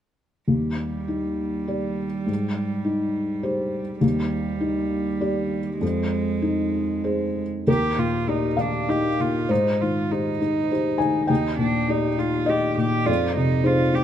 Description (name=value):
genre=neoclassical piano and strings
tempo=100 BPM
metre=3/4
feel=rubato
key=Eb major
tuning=A4 = 439 Hz
part: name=rich cello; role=second line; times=0.5-14.0 s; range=G3 to G4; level=-28 LUFS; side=right 6 dB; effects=none
part: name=felt-muted upright piano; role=accompaniment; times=0.5-14.0 s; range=Eb2 to Ab5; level=-22 LUFS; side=left 2 dB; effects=none
room=light reverb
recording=minimal, uncompressed stereo recording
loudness=-21 LUFS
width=side -10 dB against mid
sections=0.5-7.7 A section; 7.7-14.0 B section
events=none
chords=0.5 Ebmaj7; 2.3 Abmaj7; 4.0 Ebmaj7; 5.8 Fm7; 7.7 Ebmaj7; 9.5 Abmaj7; 11.3 Ebmaj7; 13.1 Fm7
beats=| 0.48 1.09 1.69 | 2.28 2.86 3.45 | 4.03 4.61 5.21 | 5.81 6.42 7.04 | 7.67 8.28 8.89 | 9.50 10.10 10.70 | 11.29 11.89 12.49 | 13.08 13.66